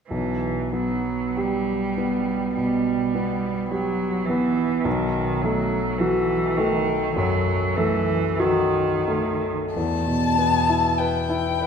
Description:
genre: classical, slow romantic movement for piano trio.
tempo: 42-53 BPM.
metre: 4/4.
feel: rubato.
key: E minor.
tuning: A4 = 440 Hz.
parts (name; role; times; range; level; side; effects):
rich cello; second line; 0.1-9.5 s; D#3 to G3; -26 LUFS; right 4 dB; none.
warm baby grand piano; accompaniment; 0.1-11.7 s; B1 to B4; -22 LUFS; equal; none.
rich violin; melody; 9.8-11.7 s; G5 to A5; -22 LUFS; left 6 dB; none.
room: wet concert hall reverb, RT60 2.4 s.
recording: heard from further back in the room.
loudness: -20 LUFS.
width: side -6 dB against mid.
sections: 0.1-9.8 A section; 9.8-11.7 B section.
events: none.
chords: 0.1 Em/B; 4.9 B7; 9.8 Em.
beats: | 0.10 1.36 2.56 3.72 | 4.86 6.00 7.17 8.41 | 9.76 11.00.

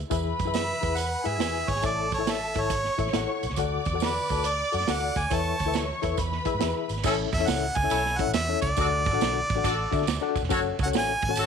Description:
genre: uptempo 1960s-style soul.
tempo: 138 BPM.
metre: 4/4.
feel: swing 65% on 8ths.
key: A major.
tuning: A4 = 438 Hz.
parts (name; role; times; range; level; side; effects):
vintage muted fingered electric bass; bass; 0.0-11.5 s; E1 to D3; -32 LUFS; right 1 dB; none.
rich studio string section; second line; 0.1-7.0 s; G#4 to D6; -32 LUFS; right 1 dB; none.
reed electric piano; accompaniment; 0.1-11.5 s; A2 to A5; -30 LUFS; left 12 dB; tremolo.
vintage drum kit; drums; 0.1-11.5 s; crash cymbal, hi-hat, kick drum, ride cymbal, snare drum; -31 LUFS; right 6 dB; none.
tambourine; percussion; 0.1-11.5 s; none; -41 LUFS; right 19 dB; none.
bright harmonica; melody; 0.5-11.5 s; B4 to A5; -28 LUFS; right 1 dB; none.
clear horn section; second line; 7.1-11.5 s; C#4 to D5; -30 LUFS; equal; none.
room: moderate spring reverb, RT60 1.2 s, small room reverb.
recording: 1960s-style stereo with parts hard left and right.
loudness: -24 LUFS.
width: side -6 dB against mid.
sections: 0.0-7.0 A section; 7.0-11.5 B section.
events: none.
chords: 0.0 E; 1.8 A; 3.6 D; 5.3 Esus4; 6.2 E; 7.0 A; 8.8 D; 10.5 F#m.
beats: | 0.12 0.55 0.98 1.41 | 1.85 2.28 2.71 3.15 | 3.58 4.01 4.45 4.88 | 5.32 5.75 6.18 6.62 | 7.05 7.48 7.91 8.35 | 8.78 9.21 9.64 10.07 | 10.51 10.94 11.37.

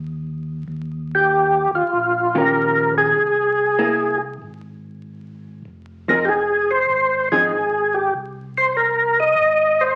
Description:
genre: jazz.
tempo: 96 BPM.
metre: 4/4.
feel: swing 67% on 8ths.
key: unclear.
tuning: A4 = 440 Hz.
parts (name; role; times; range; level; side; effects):
mellow tonewheel organ; bass; 0.0-10.0 s; F1 to Eb2; -35 LUFS; equal; chorus vibrato, slow rotary speaker.
percussive tonewheel organ; melody; 1.1-10.0 s; F4 to Eb5; -18 LUFS; equal; slow rotary speaker, overdrive, chorus vibrato.
hollow-body jazz guitar; accompaniment; 2.3-7.5 s; Eb3 to G#4; -26 LUFS; equal; none.
room: wet large studio reverb, RT60 0.9 s.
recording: very old 78 rpm record, vinyl crackle.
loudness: -19 LUFS.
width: mono.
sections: 0.0-10.0 A section.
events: none.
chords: 0.0 N.C.; 0.7 Eb9; 3.2 Caug7; 5.7 Fm7.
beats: 0.06 | 0.69 1.31 1.93 2.56 | 3.18 3.80 4.42 5.05 | 5.67 6.29 6.91 7.53 | 8.15 8.78 9.40.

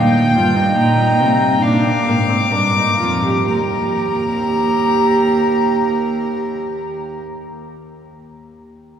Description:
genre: classical, baroque-style fugue for string quartet.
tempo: 62-75 BPM.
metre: 4/4.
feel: straight.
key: Eb major.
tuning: A4 = 440 Hz.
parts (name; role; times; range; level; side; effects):
warm violin; melody; 0.0-7.2 s; G5 to D6; -20 LUFS; left 5 dB; none.
rich violin; second line; 0.0-7.2 s; Bb4 to G5; -22 LUFS; left 1 dB; none.
rich viola; accompaniment; 0.0-7.2 s; Bb3 to G4; -20 LUFS; right 3 dB; none.
dark cello; bass; 0.0-7.2 s; Eb2 to C3; -18 LUFS; right 1 dB; none.
room: wet cathedral reverb, RT60 5.9 s.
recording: heard from further back in the room.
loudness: -14 LUFS.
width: side -8 dB against mid.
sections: 0.0-3.5 A section; 3.5-7.4 B section.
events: slowing down 0.0-3.5.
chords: 0.0 Eb; 1.6 Bb7; 3.5 Eb.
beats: 0.77 1.62 2.52 | 3.47 4.44 5.41 6.39.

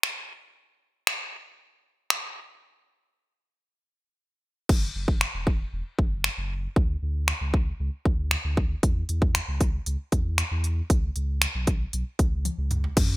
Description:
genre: dance-pop.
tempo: 116 BPM.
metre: 4/4.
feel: straight.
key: unclear.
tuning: A4 = 439 Hz.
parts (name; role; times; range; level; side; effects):
house drum kit; drums; 0.0-13.1 s; crash cymbal, finger snaps, hi-hat, kick drum, toms; -24 LUFS; equal; gated reverb.
warm sub bass; bass; 4.7-13.2 s; E1 to F#2; -28 LUFS; equal; sidechain pumping.
room: little or no reverb.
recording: bright 1980s-style digital production.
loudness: -24 LUFS.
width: side -19 dB against mid.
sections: 0.0-4.7 A section; 4.7-13.0 B section.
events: break 2.6-4.7; drum fill 12.5-13.0.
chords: none.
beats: 0.04 | 0.56 1.07 1.59 2.11 | 2.62 3.14 3.66 4.18 | 4.69 5.21 5.73 6.25 | 6.76 7.28 7.80 8.31 | 8.83 9.35 9.87 10.38 | 10.90 11.42 11.93 12.45 | 12.97.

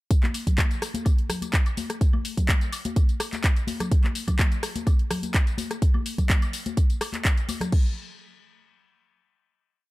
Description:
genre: house.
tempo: 126 BPM.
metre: 4/4.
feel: straight.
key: none.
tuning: none.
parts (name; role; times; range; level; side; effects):
electronic kick drum; drums; 0.1-7.8 s; none; -21 LUFS; equal; none.
house drum kit; drums; 0.1-7.8 s; crash cymbal, handclaps, hi-hat, rim click, tambourine; -29 LUFS; left 1 dB; none.
congas and woodblock; percussion; 0.2-7.7 s; none; -33 LUFS; left 3 dB; sidechain pumping on perc.
room: little or no reverb.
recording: dark, warm production.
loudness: -22 LUFS.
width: side -20 dB against mid.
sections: 0.1-7.7 drop; 7.7-9.6 final hit.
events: drop 0.1-7.7.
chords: none.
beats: | 0.11 0.58 1.06 1.53 | 2.01 2.49 2.96 3.44 | 3.92 4.39 4.87 5.34 | 5.82 6.30 6.77 7.25 | 7.72.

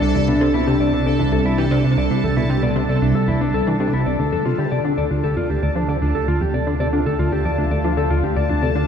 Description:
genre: ambient, sequencer-driven space music.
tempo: 115 BPM.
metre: 4/4.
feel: straight.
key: D minor.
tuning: A4 = 440 Hz.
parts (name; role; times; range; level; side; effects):
sweeping resonant pad; sustained chords; 0.0-8.9 s; C3 to F5; -22 LUFS; right 1 dB; lush chorus, shimmer reverb.
mellow electric guitar; arpeggios; 0.0-8.9 s; D4 to D5; -23 LUFS; moving between left 8 dB and right 1 dB; auto-pan, tape echo, shimmer reverb.
plucky analog bass; riff; 0.0-8.8 s; C2 to F3; -22 LUFS; equal; wide subtle chorus, tape echo.
warm sub bass; bass; 0.0-8.9 s; C2 to D2; -26 LUFS; equal; none.
bubbling stepped-filter texture; texture; 0.0-8.9 s; A4 to A5; -28 LUFS; equal; chorus, built-in reverb, shimmer reverb.
room: wet cathedral reverb, RT60 5.2 s.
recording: dreamy mix soaked in reverb.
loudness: -17 LUFS.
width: side -7 dB against mid.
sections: 0.0-4.2 A section; 4.2-8.9 B section.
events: fade-in on analog synth pad 4.2-8.9.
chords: 0.0 C; 4.2 Dm.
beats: | 0.02 0.54 1.06 1.58 | 2.10 2.63 3.15 3.67 | 4.19 4.71 5.24 5.76 | 6.28 6.80 7.32 7.84 | 8.37.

